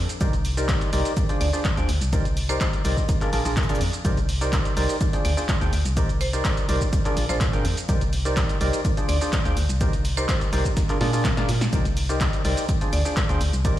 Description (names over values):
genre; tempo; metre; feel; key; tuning
piano house; 125 BPM; 4/4; straight; C minor; A4 = 439 Hz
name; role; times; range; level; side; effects
marimba with hard mallets; melody; 0.0-13.1 s; C5 to D5; -34 LUFS; right 1 dB; ping-pong delay
organ-like FM bass; bass; 0.0-13.8 s; Ab1 to Bb2; -24 LUFS; equal; sidechain pumping
punchy analog drum machine; drums; 0.1-13.8 s; handclaps, hi-hat, shaker, snare drum; -30 LUFS; equal; none
percussive organ stab; riff; 0.2-13.8 s; D4 to G5; -28 LUFS; equal; lush chorus, sidechain pumping, ping-pong delay
dusty soul sampler-style drum kit; drums; 0.2-13.8 s; hi-hat, shaker, snare drum; -40 LUFS; right 1 dB; none
electronic kick drum; drums; 0.2-13.7 s; none; -24 LUFS; equal; none
room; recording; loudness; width
little or no reverb; played on a big sound system in a bare room, stone room reverb; -20 LUFS; side -13 dB against mid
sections
0.0-13.8 A section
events
drum fill 11.0-11.7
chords
0.2 Cm9; 1.2 Dm7b5; 2.1 Cm9; 3.1 Bb7; 4.0 Cm9; 5.0 Dm7b5; 6.0 Cm9; 6.9 Bb7; 7.9 Cm9; 8.8 Dm7b5; 9.8 Cm9; 10.8 Bb7; 11.7 Cm9; 12.7 Dm7b5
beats
| 0.21 0.69 1.17 1.65 | 2.13 2.61 3.09 3.57 | 4.05 4.53 5.01 5.49 | 5.97 6.45 6.93 7.41 | 7.89 8.37 8.85 9.33 | 9.81 10.29 10.77 11.25 | 11.73 12.21 12.69 13.17 | 13.65